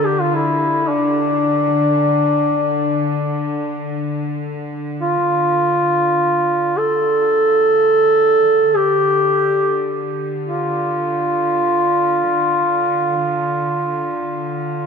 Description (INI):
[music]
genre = caucasian folk, Caucasian lament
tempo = free time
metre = none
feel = none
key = D minor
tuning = A4 = 440 Hz
[part]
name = warm duduk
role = melody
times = 0.0-14.9 s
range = D4 to A4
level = -16 LUFS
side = equal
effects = none
[part]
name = warm studio string section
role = drone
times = 0.0-14.9 s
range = D3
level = -25 LUFS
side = left 2 dB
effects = none
[sound]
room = wet cathedral reverb, RT60 5.0 s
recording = minimal, uncompressed stereo recording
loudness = -15 LUFS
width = side -6 dB against mid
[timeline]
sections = 0.0-14.9 A section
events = none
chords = none